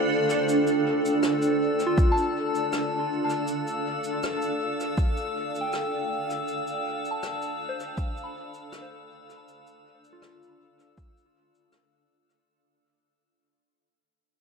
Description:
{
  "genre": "ambient dub",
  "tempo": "80 BPM",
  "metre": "4/4",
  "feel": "straight",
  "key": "D dorian",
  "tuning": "A4 = 440 Hz",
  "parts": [
    { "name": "granular cloud pad", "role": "sustained chords", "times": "0.0-12.5 s", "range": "D4 to G5", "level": "-27 LUFS", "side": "right 1 dB", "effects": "built-in reverb" },
    { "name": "soft synth bell", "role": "arpeggios", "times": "0.0-12.5 s", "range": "F4 to B5", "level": "-32 LUFS", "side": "equal", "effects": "chorus, phaser, low-pass filter, tape echo" },
    { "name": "drifting glass-harmonics texture", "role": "texture", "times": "0.0-12.5 s", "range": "F4 to E6", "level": "-35 LUFS", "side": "left 3 dB", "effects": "chorus, built-in reverb" },
    { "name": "cabasa and rim click", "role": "drums", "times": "0.3-12.4 s", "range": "none", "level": "-37 LUFS", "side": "left 2 dB", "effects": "dub echo" },
    { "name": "electronic kick drum", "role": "drums", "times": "2.0-11.1 s", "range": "none", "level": "-23 LUFS", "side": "equal", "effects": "none" }
  ],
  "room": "moderate echo chamber reverb, RT60 2.1 s",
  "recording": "echo-heavy mix",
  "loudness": "-24 LUFS",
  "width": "side -5 dB against mid",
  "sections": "0.5-12.5 A section",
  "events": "fade-out 0.5-12.5; filter sweep on synth bell 0.5-12.5",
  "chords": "0.5 Dm9",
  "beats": "| 0.48 1.23 1.98 2.73 | 3.48 4.23 4.98 5.73 | 6.48 7.23 7.98 8.73 | 9.48 10.23 10.98 11.73"
}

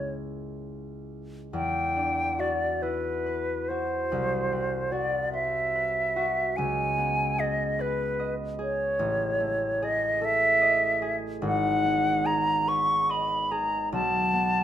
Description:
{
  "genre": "classical, impressionist duo for flute and harp",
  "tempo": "42-50 BPM (dotted quarters)",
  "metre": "6/8",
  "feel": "rubato",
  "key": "unclear",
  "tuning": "A4 = 440 Hz",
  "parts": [
    { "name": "silver concert flute", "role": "melody", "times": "0.0-14.6 s", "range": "B4 to C#6", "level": "-25 LUFS", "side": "equal", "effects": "none" },
    { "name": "concert harp", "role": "accompaniment", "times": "0.0-14.6 s", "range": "G#1 to D#5", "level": "-30 LUFS", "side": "equal", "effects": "none" }
  ],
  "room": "light reverb",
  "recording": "minimal, uncompressed stereo recording",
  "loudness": "-24 LUFS",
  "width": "side -11 dB against mid",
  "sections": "0.0-1.5 A section; 1.5-14.6 B section",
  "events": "none",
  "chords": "0.0 C#m6; 1.5 Em9; 4.1 Cmaj7#11; 6.6 C#7sus2; 9.0 Amaj7#11; 11.4 G#m7; 13.9 B7",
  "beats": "0.15 | 1.53 2.83 | 4.12 5.34 | 6.58 7.80 | 9.01 10.22 | 11.42 12.67 | 13.92"
}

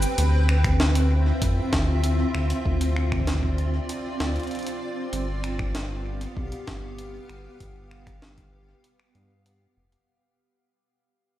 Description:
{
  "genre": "IDM",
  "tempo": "97 BPM",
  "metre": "4/4",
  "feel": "straight",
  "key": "unclear",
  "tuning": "A4 = 442 Hz",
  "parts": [
    { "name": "granular cloud pad", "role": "sustained chords", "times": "0.0-10.0 s", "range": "B3 to G5", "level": "-29 LUFS", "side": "right 1 dB", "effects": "built-in reverb" },
    { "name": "round analog bass", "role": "bass", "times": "0.0-10.0 s", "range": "F1 to G2", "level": "-23 LUFS", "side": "equal", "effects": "none" },
    { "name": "jungle sampler-style drum kit", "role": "drums", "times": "0.0-10.0 s", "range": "cabasa, finger snaps, hi-hat, snare drum", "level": "-30 LUFS", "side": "equal", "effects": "digital delay" },
    { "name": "electronic kick drum", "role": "drums", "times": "0.6-8.5 s", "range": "none", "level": "-28 LUFS", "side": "equal", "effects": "none" }
  ],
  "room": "light reverb",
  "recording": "played on a big sound system in a bare room, stone room reverb",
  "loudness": "-22 LUFS",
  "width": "side -13 dB against mid",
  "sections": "0.2-10.1 A section",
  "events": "break 0.0; fade-out 0.2-10.1",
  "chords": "0.2 Dm9; 5.1 G7",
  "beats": "| 0.18 0.80 1.42 2.04 | 2.65 3.27 3.89 4.51 | 5.13 5.75 6.37 6.98 | 7.60 8.22 8.84 9.46"
}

